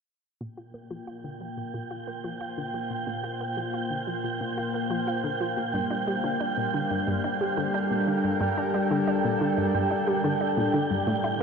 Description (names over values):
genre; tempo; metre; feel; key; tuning
ambient, sequencer-driven space music; 90 BPM; 4/4; straight; Bb major; A4 = 440 Hz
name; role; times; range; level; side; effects
lush unison pad; sustained chords; 0.4-11.4 s; A2 to F5; -29 LUFS; left 1 dB; chorus, shimmer reverb
analog pluck; riff; 0.4-11.4 s; G2 to F4; -31 LUFS; equal; chorus, tape echo, shimmer reverb
wind-like tuned noise texture; texture; 1.3-11.4 s; G5; -31 LUFS; right 4 dB; built-in reverb, shimmer reverb
room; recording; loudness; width
wet huge ambient reverb, RT60 8.7 s; dark, warm production; -25 LUFS; side -6 dB against mid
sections
0.4-11.4 A section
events
fade-in on synth arpeggio sound 0.4-11.4; fade-in on analog synth pad 0.4-11.4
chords
0.4 Bbsus2; 5.7 Gm7